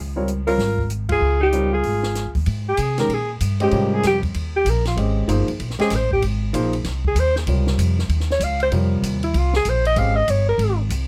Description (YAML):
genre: modal jazz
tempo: 192 BPM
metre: 4/4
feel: swing 63% on 8ths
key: Ab major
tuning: A4 = 440 Hz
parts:
  - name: upright bass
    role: bass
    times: 0.0-11.1 s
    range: G1 to C3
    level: -24 LUFS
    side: equal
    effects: none
  - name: warm concert grand piano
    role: accompaniment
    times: 0.2-10.2 s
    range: C3 to Eb5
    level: -26 LUFS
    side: equal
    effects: none
  - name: compact cocktail drum kit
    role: drums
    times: 0.3-11.0 s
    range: hi-hat, kick drum, ride cymbal, snare drum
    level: -33 LUFS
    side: equal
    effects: none
  - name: mellow alto saxophone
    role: melody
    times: 0.5-10.8 s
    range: Fb4 to F5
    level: -23 LUFS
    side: equal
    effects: none
  - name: warm alto saxophone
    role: second line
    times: 0.5-2.3 s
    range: Eb4 to F4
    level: -31 LUFS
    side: equal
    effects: none
room: little or no reverb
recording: close, detailed microphones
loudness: -20 LUFS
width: mono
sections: 0.0-2.5 A section; 2.5-11.1 B section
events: band accent 1.1; alto saxophone solo 2.5-11.1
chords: 0.0 Abmaj9; 7.5 Dbmaj9